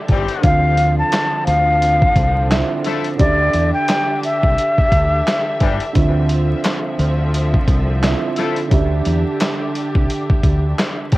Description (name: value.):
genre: hip hop, boom-bap hip-hop.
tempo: 87 BPM.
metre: 4/4.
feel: swing 59% on 16ths.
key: D minor.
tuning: A4 = 441 Hz.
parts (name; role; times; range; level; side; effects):
dark grand piano; accompaniment; 0.0-11.2 s; D3 to F5; -24 LUFS; right 4 dB; cassette tape, high-pass filter, low-pass filter.
clear studio string section; sustained chords; 0.0-11.2 s; D3 to E5; -27 LUFS; equal; high-pass filter, low-pass filter.
clear horn section; stabs; 0.1-11.2 s; E3 to A4; -26 LUFS; left 6 dB; high-pass filter, low-pass filter, analog delay.
deep dub fingered electric bass; bass; 0.1-11.2 s; G1 to E2; -18 LUFS; equal; none.
dusty soul sampler-style drum kit; drums; 0.1-11.2 s; handclaps, hi-hat, kick drum, snare drum; -18 LUFS; equal; cassette tape.
breathy concert flute; melody; 0.4-5.9 s; D5 to A5; -17 LUFS; left 1 dB; high-pass filter, low-pass filter, cassette tape.
room: light reverb, small room ambience.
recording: home recording on cassette, vinyl crackle.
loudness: -14 LUFS.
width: side -18 dB against mid.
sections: 0.0-11.2 A section.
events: none.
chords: 0.4 Dm9; 3.2 Cadd9 (rootless); 6.0 Dm9; 8.7 Cadd9 (rootless).